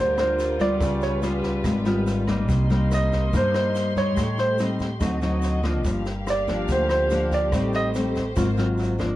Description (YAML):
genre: bossa nova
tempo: 143 BPM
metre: 4/4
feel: straight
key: G minor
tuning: A4 = 440 Hz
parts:
  - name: warm grand piano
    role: melody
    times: 0.0-7.9 s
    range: C5 to Eb5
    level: -24 LUFS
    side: right 2 dB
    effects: none
  - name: nylon-string guitar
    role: accompaniment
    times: 0.0-9.2 s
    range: G2 to Bb4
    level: -25 LUFS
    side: left 2 dB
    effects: none
  - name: warm studio string section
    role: sustained chords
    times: 0.0-9.2 s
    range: G3 to C6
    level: -32 LUFS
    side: left 1 dB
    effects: none
  - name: upright bass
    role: bass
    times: 0.0-9.2 s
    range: G1 to G2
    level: -26 LUFS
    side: equal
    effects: none
  - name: compact cocktail drum kit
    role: drums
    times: 0.2-9.1 s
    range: kick drum, rim click, snare drum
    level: -31 LUFS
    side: equal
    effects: none
  - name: tube shaker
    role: percussion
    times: 0.2-9.2 s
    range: none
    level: -48 LUFS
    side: right 4 dB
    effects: none
room: moderate small room reverb, RT60 0.6 s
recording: worn, warbling old tape, cassette tape, warbly pitch drift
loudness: -20 LUFS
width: side -15 dB against mid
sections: 0.0-9.2 A section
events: grand piano solo 0.0-9.2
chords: 0.0 Gm7; 0.8 C#7#11; 2.5 Cm7; 4.2 Am7b5; 5.0 D7b9; 5.8 Gm7; 7.5 Am7b5; 8.4 Ab13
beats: 0.39 | 0.81 1.23 1.65 2.07 | 2.49 2.91 3.33 3.75 | 4.17 4.59 5.00 5.42 | 5.84 6.26 6.68 7.10 | 7.52 7.94 8.36 8.78